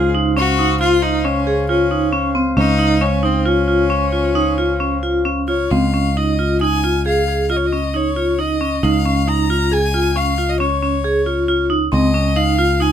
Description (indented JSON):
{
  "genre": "contemporary instrumental, chamber music in an uneven meter",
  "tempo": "136 BPM",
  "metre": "7/4",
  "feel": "straight",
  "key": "Db major",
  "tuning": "A4 = 440 Hz",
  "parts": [
    { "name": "bright violin", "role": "melody", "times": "0.0-12.9 s", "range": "C4 to Bb5", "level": "-22 LUFS", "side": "left 4 dB", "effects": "none" },
    { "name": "mellow woodwind section", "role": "sustained chords", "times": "0.0-5.7 s", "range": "Db3 to F5", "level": "-26 LUFS", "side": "right 1 dB", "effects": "none" },
    { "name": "vibraphone with hard mallets", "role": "arpeggios", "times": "0.0-12.9 s", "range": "C4 to Ab4", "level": "-17 LUFS", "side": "right 1 dB", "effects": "none" },
    { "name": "modern bright picked electric bass", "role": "bass", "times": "0.0-12.9 s", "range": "Db2", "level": "-20 LUFS", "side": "equal", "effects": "none" }
  ],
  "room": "light reverb",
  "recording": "close, detailed microphones",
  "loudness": "-14 LUFS",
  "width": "side -9 dB against mid",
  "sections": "0.0-5.7 A section; 5.7-12.9 B section",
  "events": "none",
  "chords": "0.0 Dbmaj7"
}